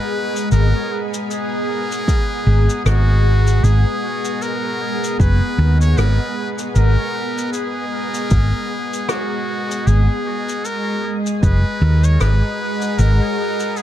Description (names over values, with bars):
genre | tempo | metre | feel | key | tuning
ambient dub | 77 BPM | 4/4 | swing 58% on 16ths | G# minor | A4 = 437 Hz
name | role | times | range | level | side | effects
trumpet with metal mute | melody | 0.0-13.8 s | F#4 to C#5 | -24 LUFS | equal | dub echo
soft additive organ-like pad | sustained chords | 0.0-13.8 s | G#3 to A#5 | -23 LUFS | equal | ensemble chorus, built-in reverb
shaker and rim click | drums | 0.4-13.8 s | none | -28 LUFS | left 2 dB | dub echo
hollow-body short-scale fingered electric bass | bass | 0.5-13.2 s | F#1 to D#2 | -13 LUFS | equal | none
electronic kick drum | drums | 2.1-11.6 s | none | -17 LUFS | equal | none
room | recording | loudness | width
small room ambience | dark, warm production | -15 LUFS | side -12 dB against mid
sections
0.0-13.8 A section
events
none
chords
0.0 G#m7; 9.9 D#m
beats
| 0.52 1.30 2.08 2.86 | 3.64 4.42 5.20 5.97 | 6.75 7.53 8.31 9.09 | 9.87 10.65 11.43 12.21 | 12.99 13.77